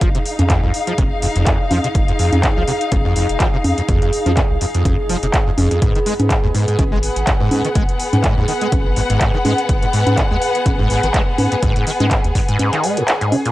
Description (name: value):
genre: acid house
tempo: 124 BPM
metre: 4/4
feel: swing 55% on 16ths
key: unclear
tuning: A4 = 443 Hz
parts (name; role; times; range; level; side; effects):
- warbly tape-like pad; sustained chords; 0.0-13.5 s; Ab4; -26 LUFS; right 2 dB; chorus, built-in reverb, sidechain pumping
- acid bass, saw; riff; 0.0-13.5 s; F2 to Ab3; -20 LUFS; equal; overdrive, ensemble chorus, analog delay
- round analog bass; bass; 0.0-12.3 s; F1 to Ab2; -21 LUFS; equal; sidechain pumping
- electro analog drum machine; drums; 0.0-13.5 s; congas, handclaps, hi-hat; -21 LUFS; equal; none
- electronic kick drum; drums; 0.0-12.5 s; none; -18 LUFS; equal; none
- warm studio string section; texture; 0.0-13.5 s; Cb4 to Gb5; -22 LUFS; left 2 dB; sidechain pumping
room: little or no reverb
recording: dry, gritty hardware recording, cassette tape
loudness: -14 LUFS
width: side -16 dB against mid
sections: 0.0-13.5 A section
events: none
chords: 0.0 Fm7; 5.8 Abm7